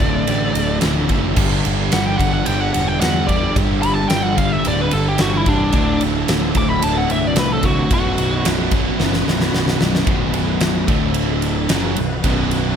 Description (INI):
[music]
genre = hard rock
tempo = 110 BPM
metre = 4/4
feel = straight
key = B minor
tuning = A4 = 440 Hz
[part]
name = biting lead guitar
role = melody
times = 0.0-8.5 s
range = D4 to D6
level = -22 LUFS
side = equal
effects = overdrive
[part]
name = overdriven tonewheel organ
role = sustained chords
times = 0.0-12.8 s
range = G3 to E5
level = -33 LUFS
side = equal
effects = slow rotary speaker, chorus vibrato
[part]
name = cranked stack guitar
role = riff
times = 0.0-12.8 s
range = B1 to G3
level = -23 LUFS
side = right 11 dB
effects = overdrive
[part]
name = sludgy distorted guitar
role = riff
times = 0.0-12.8 s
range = B1 to G3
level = -23 LUFS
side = left 10 dB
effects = overdrive
[part]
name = sludgy distorted guitar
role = riff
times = 0.0-12.8 s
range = B1 to G3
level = -26 LUFS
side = left 1 dB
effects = none
[part]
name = fuzz picked electric bass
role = bass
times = 0.0-12.8 s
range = B0 to E2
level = -22 LUFS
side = equal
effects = overdrive
[part]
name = huge arena drum kit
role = drums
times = 0.0-12.6 s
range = crash cymbal, kick drum, ride cymbal, snare drum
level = -20 LUFS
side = equal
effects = none
[sound]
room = small room reverb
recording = none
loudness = -15 LUFS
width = side -8 dB against mid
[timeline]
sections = 0.0-10.1 A section; 10.1-12.8 B section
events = lead electric guitar solo 0.0-10.1; drum fill 9.0-10.1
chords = 0.0 D; 1.4 G5; 5.7 D5; 7.9 B5; 10.9 D5; 11.7 B5